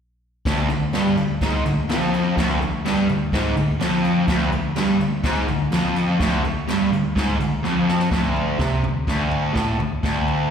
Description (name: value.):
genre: garage rock duo or trio.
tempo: 125 BPM.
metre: 4/4.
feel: straight.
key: D minor.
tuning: A4 = 441 Hz.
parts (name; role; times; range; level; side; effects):
fuzz guitar; riff; 0.5-10.5 s; D2 to C3; -19 LUFS; equal; distortion, slapback echo.
jazz brush drum kit; drums; 0.5-10.4 s; kick drum, ride cymbal, snare drum, toms; -26 LUFS; equal; none.
room: wet club reverb, RT60 0.7 s.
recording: live gig heard through the venue's PA, recital hall reverb, faint mains hum.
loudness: -18 LUFS.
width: side -7 dB against mid.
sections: 0.5-8.1 A section; 8.1-10.5 B section.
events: drum fill 7.6-8.1.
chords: none.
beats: | 0.47 0.94 1.42 1.90 | 2.37 2.85 3.33 3.81 | 4.29 4.76 5.24 5.72 | 6.20 6.68 7.16 7.64 | 8.12 8.60 9.08 9.56 | 10.04.